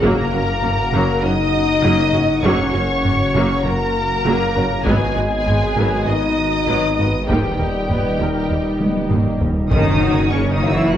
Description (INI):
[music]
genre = cinematic, hybrid orchestral and electronic film score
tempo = 99 BPM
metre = 4/4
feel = straight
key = unclear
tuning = A4 = 440 Hz
[part]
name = rich symphonic violin section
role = melody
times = 0.0-11.0 s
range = G5 to F#6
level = -25 LUFS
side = left 1 dB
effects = none
[part]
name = rich symphonic violin section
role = second line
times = 0.0-11.0 s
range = C#4 to D#5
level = -25 LUFS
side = left 1 dB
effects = none
[part]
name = warm symphonic viola section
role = accompaniment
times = 0.0-11.0 s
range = D#3 to A#4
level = -24 LUFS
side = right 1 dB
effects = none
[part]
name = chorused pulse-width pad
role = sustained chords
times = 0.0-11.0 s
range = C#3 to F#5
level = -25 LUFS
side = equal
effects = none
[part]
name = mellow French horn section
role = sustained chords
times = 0.0-11.0 s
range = G3 to F#4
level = -23 LUFS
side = left 4 dB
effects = none
[part]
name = detuned saw bass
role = bass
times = 0.0-11.0 s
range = D#1 to G#1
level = -26 LUFS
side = equal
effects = none
[part]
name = rich symphonic cello section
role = bass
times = 0.0-11.0 s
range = D#2 to F#3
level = -24 LUFS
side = right 1 dB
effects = none
[part]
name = rich symphonic double bass section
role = bass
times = 0.0-11.0 s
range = F#1 to D#2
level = -25 LUFS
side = right 2 dB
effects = none
[part]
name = taiko ensemble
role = drums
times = 0.0-10.3 s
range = none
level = -23 LUFS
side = equal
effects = none
[part]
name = felt-muted upright piano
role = texture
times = 0.0-11.0 s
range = B3 to E5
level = -32 LUFS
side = equal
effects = none
[part]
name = impact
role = sound effects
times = 9.7-11.0 s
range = none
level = -26 LUFS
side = equal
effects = none
[sound]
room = wet recital hall reverb, RT60 1.4 s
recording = worn, warbling old tape, cassette tape, warbly pitch drift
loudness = -15 LUFS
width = side -10 dB against mid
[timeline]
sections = 0.0-9.7 A section; 9.7-11.0 B section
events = drum fill 8.8-9.7; impact 9.7-11.0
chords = 0.0 F#; 4.9 G#m7; 7.3 D#; 9.7 F#